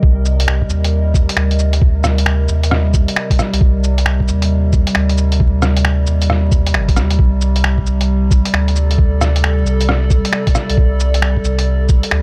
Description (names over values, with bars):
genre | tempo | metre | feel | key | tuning
future garage | 134 BPM | 4/4 | swing 64% on 16ths | C dorian | A4 = 439 Hz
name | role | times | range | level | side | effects
warbly tape-like pad | sustained chords | 0.0-12.2 s | C3 to Eb5 | -23 LUFS | equal | chorus, built-in reverb, sidechain pumping
warm sub bass | bass | 0.0-12.2 s | G1 to Eb2 | -17 LUFS | equal | sidechain pumping
electronic kick drum | drums | 0.0-12.0 s | none | -15 LUFS | equal | none
lo-fi sampler-style drum kit | drums | 0.3-12.2 s | cabasa, finger snaps, hi-hat, rim click | -22 LUFS | equal | none
room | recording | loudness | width
little or no reverb | dry, gritty hardware recording, vinyl crackle | -14 LUFS | mono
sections
0.0-12.2 A section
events
none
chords
0.0 Cm7; 7.2 Gsus2/C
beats
| 0.03 0.47 0.92 1.37 | 1.82 2.27 2.71 3.16 | 3.61 4.06 4.50 4.95 | 5.40 5.85 6.29 6.74 | 7.19 7.64 8.09 8.53 | 8.98 9.43 9.88 10.32 | 10.77 11.22 11.67 12.12